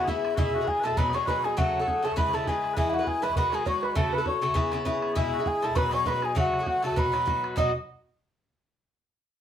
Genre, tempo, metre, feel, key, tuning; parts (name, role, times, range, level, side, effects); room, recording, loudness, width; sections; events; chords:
celtic folk, Celtic reel; 200 BPM; 4/4; swing 55% on 8ths; B mixolydian; A4 = 438 Hz
mellow baroque flute; melody; 0.0-7.7 s; E5 to D#6; -28 LUFS; left 1 dB
mellow small bagpipes; second line; 0.0-7.7 s; E4 to D#5; -35 LUFS; left 4 dB
open-back banjo; second line; 0.0-7.7 s; E4 to D#5; -35 LUFS; right 4 dB
Irish bouzouki; accompaniment; 0.0-7.7 s; B2 to B4; -29 LUFS; left 1 dB
bodhran; percussion; 0.1-7.7 s; -31 LUFS; right 1 dB
moderate studio reverb, RT60 0.6 s; band playing live in one room; -24 LUFS; side -9 dB against mid
0.0-7.6 A section; 7.6-8.8 B section
0.4 E; 1.0 B6; 1.6 F#m; 2.2 C#m7; 2.8 E; 3.4 B6/D#; 4.0 F#m; 4.6 C#m7; 5.2 E; 5.8 B6; 6.4 F#m; 7.0 B